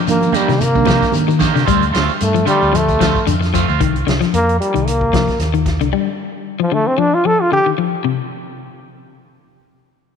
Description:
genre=afrobeat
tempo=113 BPM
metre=4/4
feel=swing 55% on 16ths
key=unclear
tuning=A4 = 440 Hz
part: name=electric guitar at the edge of break-up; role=arpeggios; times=0.0-8.2 s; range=C3 to G3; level=-20 LUFS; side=left 11 dB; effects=spring reverb
part: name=clear trombone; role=melody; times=0.1-7.7 s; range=F3 to A4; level=-17 LUFS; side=equal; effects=none
part: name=mellow reed electric piano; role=accompaniment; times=0.1-1.3 s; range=Eb3 to D4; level=-22 LUFS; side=right 14 dB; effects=fast tremolo
part: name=fingered electric bass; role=bass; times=0.1-5.9 s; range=C2 to F3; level=-18 LUFS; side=equal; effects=none
part: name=vintage drum kit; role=drums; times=0.1-5.9 s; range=hi-hat, kick drum, snare drum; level=-22 LUFS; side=equal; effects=none
part: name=shekere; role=percussion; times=0.1-3.8 s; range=none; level=-27 LUFS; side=left 9 dB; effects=none
part: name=congas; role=percussion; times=0.2-1.5 s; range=none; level=-23 LUFS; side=right 14 dB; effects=none
part: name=electric guitar at the edge of break-up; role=stabs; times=0.3-3.8 s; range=Eb3 to G4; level=-21 LUFS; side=right 10 dB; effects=spring reverb
room=moderate echo chamber reverb, RT60 2.6 s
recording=1960s-style stereo with parts hard left and right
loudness=-13 LUFS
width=side -7 dB against mid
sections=0.0-8.0 A section; 8.0-10.2 B section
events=trombone solo 0.0-8.0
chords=0.0 Cm9; 1.7 Dm7; 3.8 Cm7; 5.9 Dm; 8.0 N.C.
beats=0.08 0.61 1.14 | 1.67 2.20 2.73 3.27 | 3.80 4.33 4.86 5.39 | 5.92 6.45 6.98 7.51 | 8.04

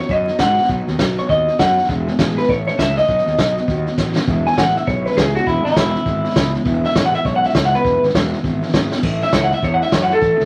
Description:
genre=rockabilly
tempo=202 BPM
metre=4/4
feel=swing 61% on 8ths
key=E major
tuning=A4 = 440 Hz
part: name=electric guitar through a small old amp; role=melody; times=0.0-10.4 s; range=E4 to G#5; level=-19 LUFS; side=equal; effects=none
part: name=picked steel-string acoustic guitar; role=accompaniment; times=0.0-10.5 s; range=E2 to A4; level=-26 LUFS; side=equal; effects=none
part: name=fuzz fingered electric bass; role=bass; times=0.1-10.5 s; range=E1 to G#2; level=-24 LUFS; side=equal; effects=overdrive
part: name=vintage drum kit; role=drums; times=0.1-10.4 s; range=hi-hat, kick drum, snare drum, splash cymbal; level=-23 LUFS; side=equal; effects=none
room=moderate club ambience, RT60 0.5 s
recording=vinyl crackle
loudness=-17 LUFS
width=mono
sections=0.0-4.3 A section; 4.3-10.5 B section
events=drum fill 4.0, 8.9; clean electric guitar solo 4.3-10.5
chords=0.0 B; 1.9 E; 2.5 A; 3.1 B; 4.3 E; 9.0 A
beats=0.10 0.40 | 0.69 0.99 1.29 1.59 | 1.89 2.19 2.49 2.79 | 3.08 3.38 3.68 3.98 | 4.28 4.57 4.87 5.17 | 5.47 5.76 6.06 6.36 | 6.66 6.95 7.25 7.55 | 7.84 8.14 8.44 8.74 | 9.03 9.33 9.63 9.92 | 10.22

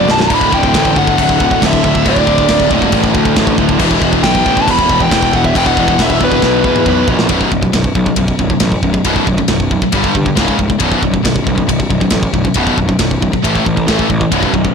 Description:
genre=heavy metal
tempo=137 BPM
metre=4/4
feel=straight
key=B minor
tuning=A4 = 440 Hz
part: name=bluesy overdriven lead guitar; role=melody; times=0.0-7.1 s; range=B4 to B5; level=-15 LUFS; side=left 1 dB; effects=distortion, tape echo
part: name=distorted electric guitar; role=riff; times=0.0-14.7 s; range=B1 to A3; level=-17 LUFS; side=left 13 dB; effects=overdrive
part: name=distorted electric guitar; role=riff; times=0.0-14.7 s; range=B1 to A3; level=-18 LUFS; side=right 14 dB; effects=overdrive
part: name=distorted electric guitar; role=riff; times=0.0-7.3, 14.3-14.7 s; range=B1 to E3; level=-19 LUFS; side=right 1 dB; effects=distortion
part: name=fuzz picked electric bass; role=bass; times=0.0-14.7 s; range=B0 to G2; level=-17 LUFS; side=right 1 dB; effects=overdrive
part: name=tight metal drum kit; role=drums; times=0.1-14.7 s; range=crash cymbal, kick drum, ride cymbal, snare drum, toms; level=-16 LUFS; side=equal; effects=none
room=light reverb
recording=blown-out, overdriven recording, overdrive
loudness=-10 LUFS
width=side -6 dB against mid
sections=0.0-7.3 A section; 7.3-14.7 B section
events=drum fill 0.0-0.3, 6.4-7.3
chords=0.3 D5; 3.8 E5; 7.3 B5; 9.9 G5; 10.4 C#5; 10.8 B5; 13.4 A5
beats=| 0.31 0.74 1.18 1.62 | 2.06 2.49 2.93 3.37 | 3.80 4.24 4.68 5.11 | 5.55 5.99 6.42 6.86 | 7.30 7.74 8.18 8.62 | 9.05 9.49 9.93 10.37 | 10.81 11.25 11.69 12.13 | 12.56 13.00 13.44 13.88 | 14.32

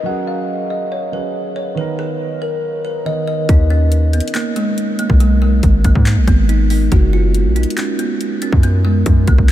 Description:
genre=hip hop, trap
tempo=140 BPM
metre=4/4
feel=half-time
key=unclear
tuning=A4 = 442 Hz
part: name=kalimba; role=melody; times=0.0-9.5 s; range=G#3 to Gb5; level=-19 LUFS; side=right 1 dB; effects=low-pass filter
part: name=dark baby grand piano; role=accompaniment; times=0.0-3.5 s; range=D#3 to A#4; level=-25 LUFS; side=right 5 dB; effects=lush chorus, low-pass filter
part: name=hard-hitting 808-style bass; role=bass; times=3.5-9.5 s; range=Gb1 to Ab2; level=-13 LUFS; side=equal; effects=none
part: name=trap drum kit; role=drums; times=3.5-9.5 s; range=handclaps, hi-hat, kick drum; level=-16 LUFS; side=equal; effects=none
room=light reverb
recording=none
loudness=-13 LUFS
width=side -13 dB against mid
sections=0.0-3.5 A section; 3.5-9.5 B section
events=filter sweep 0.0-3.5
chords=0.1 Gbsus2; 1.8 Bmaj7; 3.5 Bmaj13 (rootless); 5.2 Abm; 6.9 Gbadd11; 8.6 B5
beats=| 0.06 0.49 0.92 1.35 | 1.78 2.20 2.63 3.06 | 3.49 3.92 4.35 4.78 | 5.20 5.63 6.06 6.49 | 6.92 7.35 7.78 8.20 | 8.63 9.06 9.49

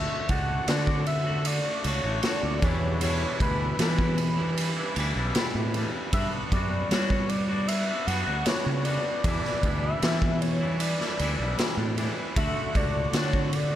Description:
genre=psychedelic rock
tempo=77 BPM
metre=4/4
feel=straight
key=E dorian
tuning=A4 = 439 Hz
part: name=octave-doubled lead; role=melody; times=0.0-13.8 s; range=B4 to F#5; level=-32 LUFS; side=left 1 dB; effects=chorus, digital delay
part: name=bright tonewheel organ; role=sustained chords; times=0.0-13.8 s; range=F#4 to F#5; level=-40 LUFS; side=right 4 dB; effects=slow rotary speaker, chorus vibrato
part: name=twangy electric guitar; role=riff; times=0.0-13.8 s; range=E2 to F#4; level=-32 LUFS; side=left 2 dB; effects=phaser
part: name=fuzz fingered electric bass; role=bass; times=0.0-13.8 s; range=A1 to G3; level=-28 LUFS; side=equal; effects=overdrive
part: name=raw garage drum kit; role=drums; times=0.3-13.7 s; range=kick drum, ride cymbal, snare drum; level=-28 LUFS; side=equal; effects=none
room=small room ambience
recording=none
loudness=-24 LUFS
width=side -12 dB against mid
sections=0.0-13.8 A section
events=none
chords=0.0 D; 2.6 Em7; 6.1 Gmaj7; 9.2 Em7; 12.4 D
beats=0.69 1.46 2.24 | 3.02 3.79 4.57 5.35 | 6.13 6.91 7.69 8.46 | 9.24 10.02 10.80 11.58 | 12.36 13.14

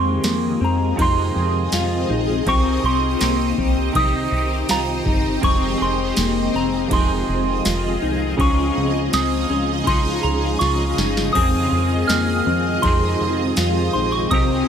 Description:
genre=dream pop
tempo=81 BPM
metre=4/4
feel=straight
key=F minor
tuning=A4 = 442 Hz
part: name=soft synth bell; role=melody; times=0.0-14.7 s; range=Bb5 to F6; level=-24 LUFS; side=right 2 dB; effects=chorus, phaser, tape echo
part: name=semi-hollow electric guitar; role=accompaniment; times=0.0-14.7 s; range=F2 to Ab4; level=-27 LUFS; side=right 4 dB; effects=harmonic tremolo, analog chorus
part: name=shimmering ambient pad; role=sustained chords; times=0.0-14.7 s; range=Db3 to Eb5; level=-24 LUFS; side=equal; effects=chorus, built-in reverb, phaser
part: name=mellow electric guitar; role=arpeggios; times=0.0-14.7 s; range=Bb3 to F4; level=-24 LUFS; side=left 6 dB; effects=analog chorus, tape echo
part: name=plucky analog bass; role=bass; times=0.0-14.6 s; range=F1 to F2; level=-24 LUFS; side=equal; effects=none
part: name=booming analog drum machine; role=drums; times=0.2-14.5 s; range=crash cymbal, kick drum, ride cymbal, snare drum, tambourine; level=-23 LUFS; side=equal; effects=none
room=light reverb, digital ambience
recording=none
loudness=-17 LUFS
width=side -8 dB against mid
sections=0.0-14.7 A section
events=drum fill 10.6-11.4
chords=0.0 Fm7; 2.5 Cm; 5.4 Fm7; 8.4 Dbadd9; 11.4 Fm7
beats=0.24 0.98 1.72 | 2.46 3.20 3.94 4.68 | 5.42 6.17 6.91 7.65 | 8.39 9.13 9.87 10.61 | 11.35 12.09 12.83 13.57 | 14.31

